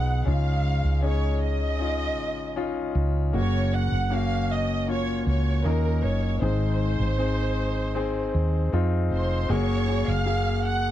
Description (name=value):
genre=pop ballad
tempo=78 BPM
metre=4/4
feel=straight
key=unclear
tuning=A4 = 443 Hz
part: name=warm studio violin section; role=melody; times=0.0-10.9 s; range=Bb4 to Gb6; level=-30 LUFS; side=right 3 dB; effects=slapback echo
part: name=clear concert grand piano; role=accompaniment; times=0.0-10.9 s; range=Ab2 to Ab4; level=-28 LUFS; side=left 4 dB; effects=none
part: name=woody fretless electric bass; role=bass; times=0.0-10.9 s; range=F1 to F2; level=-24 LUFS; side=right 1 dB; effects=analog chorus
room=little or no reverb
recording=dry, close 1970s-style studio recording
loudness=-22 LUFS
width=side -12 dB against mid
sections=0.0-9.5 A section; 9.5-10.9 B section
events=none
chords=0.3 Dbadd9; 3.3 Gb; 6.4 Ab; 9.5 Gbadd9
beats=| 0.27 1.04 1.80 2.58 | 3.34 4.11 4.88 5.65 | 6.42 7.19 7.96 8.73 | 9.50 10.27